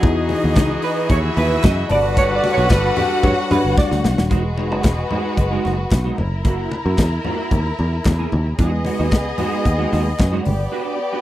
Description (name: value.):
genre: disco.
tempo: 112 BPM.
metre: 4/4.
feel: straight.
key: unclear.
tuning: A4 = 440 Hz.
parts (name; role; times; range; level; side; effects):
warm studio violin section; second line; 0.0-11.2 s; G#3 to F#5; -24 LUFS; left 1 dB; none.
barky tine electric piano; accompaniment; 0.0-4.3 s; E3 to C#5; -24 LUFS; left 6 dB; overdrive, phaser.
semi-hollow electric guitar; accompaniment; 0.0-11.2 s; G#3 to D#5; -23 LUFS; right 3 dB; ensemble chorus.
muted French horn section; sustained chords; 0.0-4.3 s; E3 to B4; -26 LUFS; right 2 dB; none.
picked electric bass; bass; 0.0-10.7 s; D#1 to G2; -20 LUFS; equal; none.
modern studio drum kit; drums; 0.0-10.6 s; handclaps, hi-hat, kick drum, snare drum; -17 LUFS; equal; none.
congas; percussion; 0.0-10.6 s; none; -27 LUFS; left 2 dB; none.
room: little or no reverb.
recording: dry, close 1970s-style studio recording.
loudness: -16 LUFS.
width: side -14 dB against mid.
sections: 0.0-4.3 A section; 4.3-11.2 B section.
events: clean electric guitar solo 0.0-4.3; drum fill 3.8-4.3; break 10.7-11.2.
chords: 0.0 Emaj9; 1.9 Gmaj7; 4.3 Emaj9; 6.2 F#7; 8.6 Emaj9; 10.5 Gmaj7.